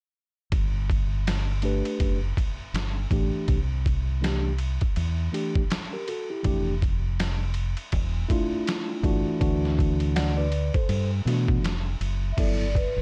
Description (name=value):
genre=hip hop, jazz-hop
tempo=81 BPM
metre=4/4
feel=swing 58% on 16ths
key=G major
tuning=A4 = 438 Hz
part: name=deep dub fingered electric bass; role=bass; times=0.5-13.0 s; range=E1 to B2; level=-29 LUFS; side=equal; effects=none
part: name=trip hop sampler-style drum kit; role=drums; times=0.5-13.0 s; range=crash cymbal, hi-hat, kick drum, ride cymbal, snare drum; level=-30 LUFS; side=equal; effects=none
part: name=mellow tine electric piano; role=accompaniment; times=1.6-12.7 s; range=E3 to F#5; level=-30 LUFS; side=equal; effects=none
part: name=vibraphone with soft mallets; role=melody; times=12.3-13.0 s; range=B4 to E5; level=-32 LUFS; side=equal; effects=none
room=digital ambience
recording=dry, gritty hardware recording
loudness=-26 LUFS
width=mono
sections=0.5-12.4 A section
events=none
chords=0.5 Gmaj7; 2.7 Gsus2; 3.5 C; 6.4 Fmaj9; 9.4 Dadd9; 10.9 Gmaj7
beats=| 0.52 1.26 2.00 2.75 | 3.49 4.23 4.97 5.71 | 6.45 7.19 7.93 8.67 | 9.41 10.15 10.89 11.63 | 12.38